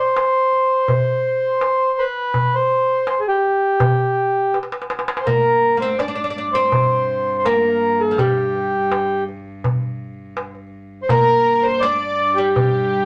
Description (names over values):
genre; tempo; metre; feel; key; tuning
Arabic maqam ensemble; 82 BPM; 4/4; straight; unclear; A4 = 441 Hz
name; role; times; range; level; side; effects
mellow accordion; melody; 0.0-13.1 s; G4 to D5; -19 LUFS; equal; none
darbuka; percussion; 0.2-12.8 s; none; -24 LUFS; equal; none
oud; second line; 5.3-13.1 s; F3 to D4; -28 LUFS; equal; none
rich cello; drone; 5.3-13.1 s; G2; -36 LUFS; equal; none
warm chamber violin section; second line; 11.1-13.1 s; G4 to D5; -31 LUFS; equal; none
room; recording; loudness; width
moderate small room reverb, RT60 0.5 s; faint mains hum; -18 LUFS; mono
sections
0.0-5.3 A section; 5.3-13.1 B section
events
drum fill 4.5-5.3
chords
none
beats
0.16 0.89 1.62 | 2.35 3.08 3.81 4.53 | 5.26 5.99 6.72 7.45 | 8.18 8.91 9.64 10.37 | 11.10 11.83 12.55